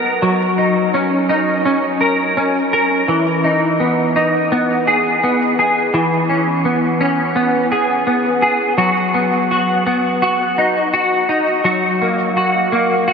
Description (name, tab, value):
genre	dream pop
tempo	84 BPM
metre	4/4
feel	straight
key	unclear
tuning	A4 = 439 Hz
part	semi-hollow electric guitar	solo	0.0-13.1 s	E3 to A#4	-13 LUFS	equal	ensemble chorus, tape echo
room	wet huge ambient reverb, RT60 8.7 s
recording	dreamy mix soaked in reverb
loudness	-13 LUFS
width	side -6 dB against mid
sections	0.0-8.8 A section; 8.8-13.1 B section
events	none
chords	0.2 D#m7; 3.1 Emaj7; 5.9 E6; 8.8 B/F#; 11.7 F#6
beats	| 0.22 0.94 1.65 2.37 | 3.08 3.79 4.51 5.22 | 5.94 6.65 7.37 8.08 | 8.79 9.51 10.22 10.94 | 11.65 12.37 13.08